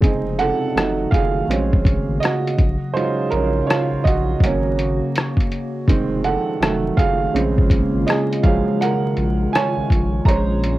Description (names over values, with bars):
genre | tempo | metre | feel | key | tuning
lo-fi hip hop | 82 BPM | 4/4 | swing 63% on 16ths | Bb minor | A4 = 440 Hz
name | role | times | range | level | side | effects
warm upright piano | accompaniment | 0.0-10.8 s | Db3 to Bb5 | -20 LUFS | right 4 dB | cassette tape, low-pass filter
warbly tape-like pad | sustained chords | 0.0-10.8 s | Bb2 to F5 | -24 LUFS | left 1 dB | chorus, built-in reverb, low-pass filter, cassette tape
round analog bass | bass | 0.0-10.8 s | F1 to Bb1 | -24 LUFS | equal | transformer saturation
lo-fi sampler-style drum kit | drums | 0.0-10.8 s | hi-hat, kick drum, rim click | -18 LUFS | equal | vintage 12-bit sampler grit, cassette tape
room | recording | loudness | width
light reverb | home recording on cassette, vinyl crackle, tape stop | -16 LUFS | side -16 dB against mid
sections
0.0-10.8 A section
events
upright piano solo 0.0-10.8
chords
0.0 Fm7; 0.8 F7b9; 1.5 Bbm7; 2.6 Ebm11/Bb; 4.4 Ab9sus4; 5.9 Fm7; 6.6 F7b9; 7.3 Bbm7; 8.4 Ebm11/Bb; 10.3 Bbm9